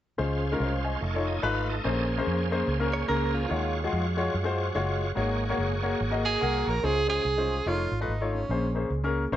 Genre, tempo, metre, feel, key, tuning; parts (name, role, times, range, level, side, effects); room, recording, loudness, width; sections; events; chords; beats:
gospel; 145 BPM; 4/4; swing 61% on 8ths; Db major; A4 = 443 Hz
clear grand piano; accompaniment; 0.2-9.4 s; Ab2 to Bb5; -29 LUFS; left 3 dB
bright tonewheel organ; sustained chords; 0.2-6.8 s; Ab3 to Bb5; -34 LUFS; right 3 dB; overdrive, chorus vibrato, fast rotary speaker
vintage muted fingered electric bass; bass; 0.2-9.4 s; F1 to Gb2; -30 LUFS; equal
direct-recorded clean electric guitar; second line; 2.9-3.7 s; F4 to Db5; -33 LUFS; right 6 dB; tremolo
breathy tenor saxophone; melody; 6.3-8.7 s; C#4 to Bb4; -28 LUFS; right 4 dB; slapback echo
light reverb, small room reverb; nothing above 8.0 kHz; -25 LUFS; side -12 dB against mid
0.2-6.8 A section; 6.8-9.4 B section
grand piano fill 6.0-6.8; tonewheel organ fill 6.0-6.8
0.2 Dbmaj7; 1.0 F7alt; 1.8 Bbm9; 3.5 Ebm11; 5.2 Ab9sus4; 6.8 Dbmaj7; 7.7 F7alt; 8.5 Bbm9
| 0.19 0.60 1.02 1.43 | 1.85 2.26 2.68 3.09 | 3.51 3.92 4.34 4.75 | 5.17 5.58 6.00 6.41 | 6.83 7.24 7.65 8.07 | 8.48 8.90 9.31